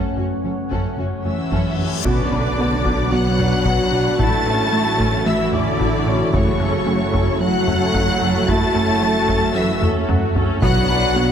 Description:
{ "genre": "cinematic, hybrid orchestral and electronic film score", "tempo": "112 BPM", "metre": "4/4", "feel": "straight", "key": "B minor", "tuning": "A4 = 440 Hz", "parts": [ { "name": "warm symphonic violin section", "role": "melody", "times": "0.0-11.3 s", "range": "A4 to A6", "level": "-27 LUFS", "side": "left 3 dB", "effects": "low-pass filter" }, { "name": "warm symphonic violin section", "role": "second line", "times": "0.0-11.3 s", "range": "C#4 to A5", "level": "-26 LUFS", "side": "left 2 dB", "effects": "none" }, { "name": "rich symphonic viola section", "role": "accompaniment", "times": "0.0-11.3 s", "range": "A3 to B4", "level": "-26 LUFS", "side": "equal", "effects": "low-pass filter" }, { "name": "deep dark ambient pad", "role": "sustained chords", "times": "0.0-11.3 s", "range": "E3 to F#5", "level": "-26 LUFS", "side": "equal", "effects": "chorus, built-in reverb, low-pass filter" }, { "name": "resonant blip pluck", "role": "arpeggios", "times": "0.0-11.3 s", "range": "F#3 to B4", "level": "-30 LUFS", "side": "equal", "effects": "none" }, { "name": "rubbery square bass", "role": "riff", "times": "0.0-11.3 s", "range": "F#2 to B3", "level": "-23 LUFS", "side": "right 1 dB", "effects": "low-pass filter" }, { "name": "reverse cymbal and impact", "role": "sound effects", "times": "1.4-4.2 s", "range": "none", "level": "-31 LUFS", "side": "left 3 dB", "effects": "none" }, { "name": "warm baby grand piano", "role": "texture", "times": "0.0-10.7 s", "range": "E4 to E5", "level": "-32 LUFS", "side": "left 1 dB", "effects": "none" }, { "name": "rich studio double bass section", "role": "bass", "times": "0.2-11.3 s", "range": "F#1 to B1", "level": "-26 LUFS", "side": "right 2 dB", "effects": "none" }, { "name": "warm symphonic cello section", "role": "bass", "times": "0.2-11.3 s", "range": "F#2 to A3", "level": "-24 LUFS", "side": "right 2 dB", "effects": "none" }, { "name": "solo taiko drums", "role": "drums", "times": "0.7-11.1 s", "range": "none", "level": "-26 LUFS", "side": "left 1 dB", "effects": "none" }, { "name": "mellow French horn section", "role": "sustained chords", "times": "2.1-11.3 s", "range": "F#3 to F#4", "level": "-26 LUFS", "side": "left 4 dB", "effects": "low-pass filter" } ], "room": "wet concert hall reverb, RT60 2.2 s", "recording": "none", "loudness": "-16 LUFS", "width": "side -8 dB against mid", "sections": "0.0-2.1 A section; 2.1-11.3 B section", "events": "filter sweep 0.0-2.1; reverse cymbal 1.4-2.1; impact 2.1-4.2; drum fill 9.8-10.6", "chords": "0.0 F#m; 2.1 Bm; 4.2 A6; 6.3 F#m; 10.6 Bm" }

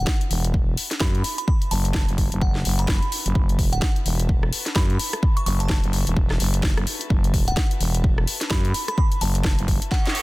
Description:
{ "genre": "bass house", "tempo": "128 BPM", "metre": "4/4", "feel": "swing 59% on 16ths", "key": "F# minor", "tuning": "A4 = 442 Hz", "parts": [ { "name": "glassy synth bell", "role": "melody", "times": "0.0-10.1 s", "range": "F#5 to C#6", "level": "-32 LUFS", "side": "right 1 dB", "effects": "chorus, dub echo" }, { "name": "growling FM bass", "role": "bass", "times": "0.0-9.8 s", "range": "E1 to F#2", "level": "-22 LUFS", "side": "equal", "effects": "tube saturation, sidechain pumping" }, { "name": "dark studio string section", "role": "texture", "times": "0.0-10.2 s", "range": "F#4 to A5", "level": "-42 LUFS", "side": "left 3 dB", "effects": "sidechain pumping" }, { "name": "electronic kick drum", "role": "drums", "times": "0.1-10.0 s", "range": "none", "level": "-21 LUFS", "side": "equal", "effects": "overdrive" }, { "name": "house drum kit", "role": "drums", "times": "0.1-10.2 s", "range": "hi-hat, rim click, snare drum", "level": "-27 LUFS", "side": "left 1 dB", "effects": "overdrive" }, { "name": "reverse cymbal", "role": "sound effects", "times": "10.0-10.2 s", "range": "none", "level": "-26 LUFS", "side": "right 4 dB", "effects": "none" } ], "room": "little or no reverb", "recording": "dense, heavily limited modern master", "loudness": "-19 LUFS", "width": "side -20 dB against mid", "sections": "0.0-10.2 A section", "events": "fade-in on string section 0.0-10.2; drum fill 9.9-10.2; reverse cymbal 10.0", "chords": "0.0 F#m" }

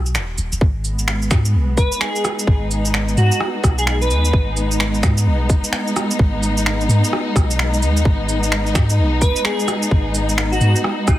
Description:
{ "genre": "future garage", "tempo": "129 BPM", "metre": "4/4", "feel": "swing 62% on 16ths", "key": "G# minor", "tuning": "A4 = 440 Hz", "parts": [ { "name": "soft 808-style bass", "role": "bass", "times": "0.0-11.2 s", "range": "D#1 to G#2", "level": "-18 LUFS", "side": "equal", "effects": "tube saturation, sidechain pumping" }, { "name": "electronic shaker, finger snaps, cabasa and rim click", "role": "drums", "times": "0.1-11.2 s", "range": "none", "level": "-22 LUFS", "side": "right 1 dB", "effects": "none" }, { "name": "warm symphonic string section", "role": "sustained chords", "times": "0.6-11.2 s", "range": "B3 to D#4", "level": "-22 LUFS", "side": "equal", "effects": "sidechain pumping" }, { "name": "electronic kick drum", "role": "drums", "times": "0.6-11.2 s", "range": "none", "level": "-16 LUFS", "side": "equal", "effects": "none" }, { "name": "airy dreamy lead", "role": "melody", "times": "1.8-4.3, 9.2-11.2 s", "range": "D#4 to B4", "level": "-23 LUFS", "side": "equal", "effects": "chorus, cassette tape, dub echo" } ], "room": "light reverb", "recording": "heavily compressed radio sound, multiband compression", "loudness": "-15 LUFS", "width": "side -14 dB against mid", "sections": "0.6-11.2 A section", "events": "none", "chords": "0.0 G#m (rootless); 0.6 G#m" }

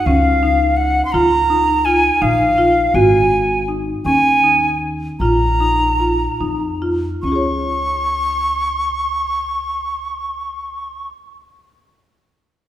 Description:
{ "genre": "contemporary instrumental, chamber music in an uneven meter", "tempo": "142-168 BPM (eighths)", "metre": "11/8", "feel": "straight", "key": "Db major", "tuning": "A4 = 436 Hz", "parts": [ { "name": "breathy bright jazz flute", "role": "melody", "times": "0.0-11.1 s", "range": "F5 to Db6", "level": "-16 LUFS", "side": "equal", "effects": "none" }, { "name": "marimba with medium hard mallets", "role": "arpeggios", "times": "0.1-11.2 s", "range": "Db4 to Db5", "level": "-18 LUFS", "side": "equal", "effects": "none" }, { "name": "upright bass", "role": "bass", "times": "0.1-11.1 s", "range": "Ab1 to F2", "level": "-22 LUFS", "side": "equal", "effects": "none" } ], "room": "wet recital hall reverb, RT60 1.5 s", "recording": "recorded in a church or concert hall", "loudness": "-14 LUFS", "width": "side -12 dB against mid", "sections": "0.0-7.2 A section; 7.2-11.9 B section", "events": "slowing down 1.1-7.2", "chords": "0.0 Gb5; 1.1 Db; 2.9 Ab5; 5.2 Bb5; 7.2 Db" }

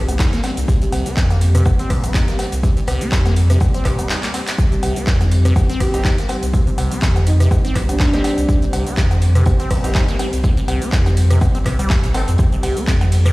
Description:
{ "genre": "acid house", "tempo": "123 BPM", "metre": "4/4", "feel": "swing 55% on 16ths", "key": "unclear", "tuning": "A4 = 438 Hz", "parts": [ { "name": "dark analog pad", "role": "sustained chords", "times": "0.0-13.3 s", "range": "G3 to C5", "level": "-26 LUFS", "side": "equal", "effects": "chorus, sidechain pumping" }, { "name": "liquid acid bass", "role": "riff", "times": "0.0-13.3 s", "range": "Bb2 to Eb4", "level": "-25 LUFS", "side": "equal", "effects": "phaser, digital delay" }, { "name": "saturated sub bass", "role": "bass", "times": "0.0-13.3 s", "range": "G1 to F2", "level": "-17 LUFS", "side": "equal", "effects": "sidechain pumping" }, { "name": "booming analog drum machine", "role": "drums", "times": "0.1-13.3 s", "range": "cowbell, handclaps, hi-hat, ride cymbal, rim click, shaker", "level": "-25 LUFS", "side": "equal", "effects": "overdrive" }, { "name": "vintage brush drum kit", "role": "drums", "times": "0.1-13.3 s", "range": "hi-hat, snare drum, tambourine", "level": "-37 LUFS", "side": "left 1 dB", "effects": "none" }, { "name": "electronic kick drum", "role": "drums", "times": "0.2-13.0 s", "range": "none", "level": "-17 LUFS", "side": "equal", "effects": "none" }, { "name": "breathy flute-like synth lead", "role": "melody", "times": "5.8-8.6 s", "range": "D4 to G4", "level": "-25 LUFS", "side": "right 1 dB", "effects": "chorus, digital delay" }, { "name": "bright concert grand piano", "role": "stabs", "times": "5.9-12.3 s", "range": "C4 to A4", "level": "-29 LUFS", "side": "right 1 dB", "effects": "digital delay" } ], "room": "little or no reverb", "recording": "played on a big sound system in a bare room, stone room reverb", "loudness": "-14 LUFS", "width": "side -20 dB against mid", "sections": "0.0-13.3 A section", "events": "break 4.1-4.6; drum fill 4.2-4.6", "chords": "0.0 Cm" }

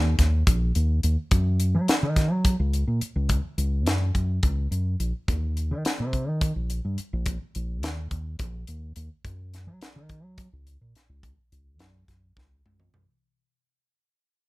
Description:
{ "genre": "electric jazz fusion", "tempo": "212 BPM (eighths)", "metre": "7/8", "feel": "straight", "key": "unclear", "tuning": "A4 = 439 Hz", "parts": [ { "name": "fingered electric bass", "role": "bass", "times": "0.0-13.1 s", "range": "Bb1 to Gb3", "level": "-25 LUFS", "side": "equal", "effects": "none" }, { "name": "crisp fusion drum kit", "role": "drums", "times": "0.2-13.1 s", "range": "hi-hat, kick drum, snare drum, toms", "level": "-24 LUFS", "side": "equal", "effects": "none" } ], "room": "little or no reverb", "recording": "faint mains hum", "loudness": "-23 LUFS", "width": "side -20 dB against mid", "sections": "0.0-13.2 A section", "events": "fade-out 0.0-13.2; drum fill 12.4-13.2", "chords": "none" }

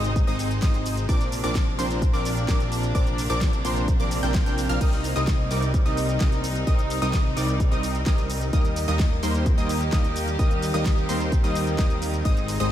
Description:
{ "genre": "EDM, festival progressive house", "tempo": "129 BPM", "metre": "4/4", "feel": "straight", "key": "unclear", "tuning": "A4 = 439 Hz", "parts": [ { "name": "clear studio string section", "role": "sustained chords", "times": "0.0-12.7 s", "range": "C3 to G4", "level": "-32 LUFS", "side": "equal", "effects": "sidechain pumping" }, { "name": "wide unison pluck", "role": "arpeggios", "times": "0.0-12.7 s", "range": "C6 to G6", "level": "-33 LUFS", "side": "equal", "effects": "cassette tape, sidechain pumping, diffuse ambient delay" }, { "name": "supersaw stab", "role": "riff", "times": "0.0-12.7 s", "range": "F3 to G5", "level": "-28 LUFS", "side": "equal", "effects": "wide subtle chorus, sidechain pumping, diffuse ambient delay" }, { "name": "fat analog bass", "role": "bass", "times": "0.0-12.7 s", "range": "Ab1 to Eb2", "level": "-28 LUFS", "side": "equal", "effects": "sidechain pumping" }, { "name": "pop drum kit", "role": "drums", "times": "0.0-12.7 s", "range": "crash cymbal, hi-hat, ride cymbal, shaker, snare drum", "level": "-33 LUFS", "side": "equal", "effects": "none" }, { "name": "electronic kick drum", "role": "drums", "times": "0.2-12.3 s", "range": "none", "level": "-22 LUFS", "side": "equal", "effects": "none" } ], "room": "light reverb", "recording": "none", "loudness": "-21 LUFS", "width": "side -11 dB against mid", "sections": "0.0-12.7 A section", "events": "none", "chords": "0.0 Ab; 1.1 Bbadd9; 4.8 Cm7; 8.5 Eb" }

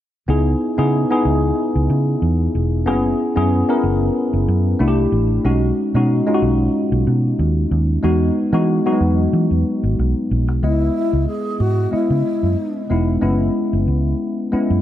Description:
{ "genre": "polished 1980s jazz-funk pop", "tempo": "93 BPM", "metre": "4/4", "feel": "swing 54% on 16ths", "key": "C# dorian", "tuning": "A4 = 444 Hz", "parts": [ { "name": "mellow tine electric piano", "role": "accompaniment", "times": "0.3-14.8 s", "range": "F#3 to D#5", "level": "-18 LUFS", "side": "left 1 dB", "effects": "analog chorus" }, { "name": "vintage muted fingered electric bass", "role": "bass", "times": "0.3-14.8 s", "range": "E1 to E3", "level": "-18 LUFS", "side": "equal", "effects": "none" }, { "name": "breathy mellow wooden-headed alto flute", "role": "melody", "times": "10.6-12.9 s", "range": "E4 to G#4", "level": "-22 LUFS", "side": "left 1 dB", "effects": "tape echo" } ], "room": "light reverb", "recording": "none", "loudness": "-15 LUFS", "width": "side -12 dB against mid", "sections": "0.3-10.6 A section; 10.6-14.8 B section", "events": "none", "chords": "0.3 C#m7; 2.9 F#9sus4; 4.8 C6; 5.5 B6; 8.0 Emaj7; 10.6 C#m7; 13.2 F#9sus4" }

